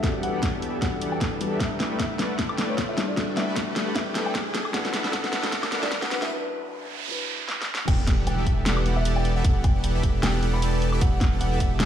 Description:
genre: future bass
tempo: 153 BPM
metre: 4/4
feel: swing 55% on 16ths, half-time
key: E minor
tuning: A4 = 439 Hz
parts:
  - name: dark baby grand piano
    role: melody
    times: 0.0-11.7 s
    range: C#5 to B5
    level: -34 LUFS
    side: left 1 dB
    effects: sidechain pumping, low-pass filter, tape echo
  - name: felt-muted upright piano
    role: accompaniment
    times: 0.0-7.9 s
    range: F#3 to B4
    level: -33 LUFS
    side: left 4 dB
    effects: sidechain pumping, tape echo
  - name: soft supersaw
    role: riff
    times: 0.0-11.9 s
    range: E3 to A5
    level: -29 LUFS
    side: equal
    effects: sidechain pumping, low-pass filter
  - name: electronic kick drum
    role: drums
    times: 0.0-11.7 s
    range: none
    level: -25 LUFS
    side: equal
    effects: none
  - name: pop drum kit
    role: drums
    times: 0.0-11.9 s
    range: crash cymbal, hi-hat, snare drum, woodblock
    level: -28 LUFS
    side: equal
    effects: none
  - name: riser, noise sweep and impact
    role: sound effects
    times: 0.0-9.4 s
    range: none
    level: -34 LUFS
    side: right 2 dB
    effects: none
  - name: saturated sub bass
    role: bass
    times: 7.9-11.9 s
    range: E1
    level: -25 LUFS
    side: equal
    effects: sidechain pumping
room: light reverb, digital ambience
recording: played on a big sound system in a bare room, large studio reverb, high-pass filter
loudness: -22 LUFS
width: side -10 dB against mid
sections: 0.0-7.9 A section; 7.9-11.9 B section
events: build-up 0.0-7.9; drum fill 0.0-6.3, 7.5-7.9; riser 0.0-6.3; filter sweep on supersaw synth 0.0-7.9; filter sweep 0.0-7.9; break 6.3-7.9; noise sweep 6.3-7.9; drop 7.9-11.9; impact 7.9-9.4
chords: 0.0 Em11; 1.6 A7sus4; 4.7 D69; 7.9 Em11

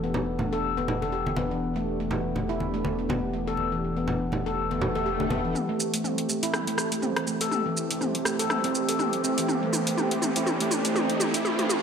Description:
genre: afro house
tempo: 122 BPM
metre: 4/4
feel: swing 57% on 16ths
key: A minor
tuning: A4 = 440 Hz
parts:
  - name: warm analog pad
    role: sustained chords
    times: 0.0-11.8 s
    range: E3 to G4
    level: -32 LUFS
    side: equal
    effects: chorus
  - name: handpan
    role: arpeggios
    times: 0.0-11.7 s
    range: E3 to A4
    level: -28 LUFS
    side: equal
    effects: low-pass filter, tape echo
  - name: round analog bass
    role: bass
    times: 0.0-5.5 s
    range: E1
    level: -36 LUFS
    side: equal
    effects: none
  - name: congas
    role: percussion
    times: 0.1-5.4 s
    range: none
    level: -31 LUFS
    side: right 2 dB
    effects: none
  - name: swell and riser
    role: sound effects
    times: 4.7-11.8 s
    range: none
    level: -34 LUFS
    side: left 1 dB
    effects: none
  - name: deep house drum kit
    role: drums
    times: 5.6-11.8 s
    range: hi-hat, rim click, shaker, toms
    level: -28 LUFS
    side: equal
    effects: overdrive, studio reverb
room: moderate lush hall reverb, RT60 1.5 s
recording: dry, gritty hardware recording, high-pass filter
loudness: -24 LUFS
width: side -7 dB against mid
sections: 0.0-5.6 A section; 5.6-11.8 B section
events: swell 4.7-5.6; build-up 5.6-11.8; drum fill 5.6-11.8; riser 5.6-11.8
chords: 0.0 Em7; 5.6 Am7

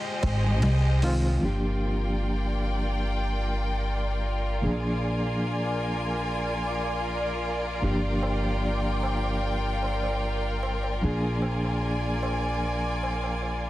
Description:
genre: trip hop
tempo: 75 BPM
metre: 4/4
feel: straight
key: G phrygian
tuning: A4 = 440 Hz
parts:
  - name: rich studio violin section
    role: sustained chords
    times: 0.0-13.7 s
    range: Ab3 to Ab5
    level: -31 LUFS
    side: left 1 dB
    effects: none
  - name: upright bass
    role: bass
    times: 0.2-13.7 s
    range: G1 to C2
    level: -28 LUFS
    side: equal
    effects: none
  - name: boom bap sampler-style drum kit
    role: drums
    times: 0.2-1.2 s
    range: hi-hat, ride cymbal, snare drum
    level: -34 LUFS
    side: equal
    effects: overdrive
  - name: tabla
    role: percussion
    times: 0.2-1.4, 7.8-13.6 s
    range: none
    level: -39 LUFS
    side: right 3 dB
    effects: none
  - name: reed electric piano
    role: accompaniment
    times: 1.0-13.7 s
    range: Eb3 to Ab4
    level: -31 LUFS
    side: equal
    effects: fast tremolo, harmonic tremolo, tape echo
  - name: backwards swelling texture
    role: texture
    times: 2.5-13.7 s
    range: D5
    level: -37 LUFS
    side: equal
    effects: built-in reverb
room: small room ambience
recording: dense, heavily limited modern master, vinyl crackle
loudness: -25 LUFS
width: side -15 dB against mid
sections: 0.0-1.4 A section; 1.4-13.7 B section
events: break 0.0-1.4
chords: 0.0 Abmaj7; 1.4 Gm7; 4.6 Bb7; 7.8 Gm7; 11.0 Bb7

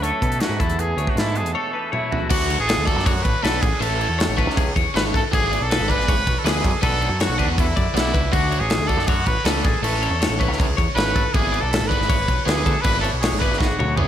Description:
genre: math rock and midwest emo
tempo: 159 BPM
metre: 4/4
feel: straight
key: unclear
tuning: A4 = 440 Hz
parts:
  - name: clear trumpet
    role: melody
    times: 0.0-14.1 s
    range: D4 to B4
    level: -24 LUFS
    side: right 1 dB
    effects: slapback echo
  - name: twangy electric guitar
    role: accompaniment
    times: 0.0-3.6 s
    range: E2 to D4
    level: -30 LUFS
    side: right 5 dB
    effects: spring reverb, slapback echo
  - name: twelve-string electric guitar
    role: arpeggios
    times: 0.0-14.1 s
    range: F#4 to D5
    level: -27 LUFS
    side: left 7 dB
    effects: slapback echo, digital delay
  - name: growling picked electric bass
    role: bass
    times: 0.0-14.1 s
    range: G#1 to B2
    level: -25 LUFS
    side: equal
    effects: overdrive
  - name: modern studio drum kit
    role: drums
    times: 0.0-14.1 s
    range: crash cymbal, hi-hat, kick drum, snare drum, toms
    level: -21 LUFS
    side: equal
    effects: none
  - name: overdriven electric guitar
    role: riff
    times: 2.3-14.1 s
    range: A3 to D5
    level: -27 LUFS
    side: right 1 dB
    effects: slapback echo
room: moderate recital hall reverb, RT60 1.4 s, studio reverb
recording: big arena sound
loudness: -18 LUFS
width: side -10 dB against mid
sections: 0.0-2.3 A section; 2.3-14.1 B section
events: break 1.5-2.3; drum fill 1.9-2.3, 13.6-14.1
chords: 0.0 Bm7; 0.6 E7sus4; 2.3 Dmaj9; 3.6 Amaj9; 5.3 E7/G#; 6.8 Bm11; 8.3 Dmaj7; 9.6 Amaj9; 11.3 E7/G#

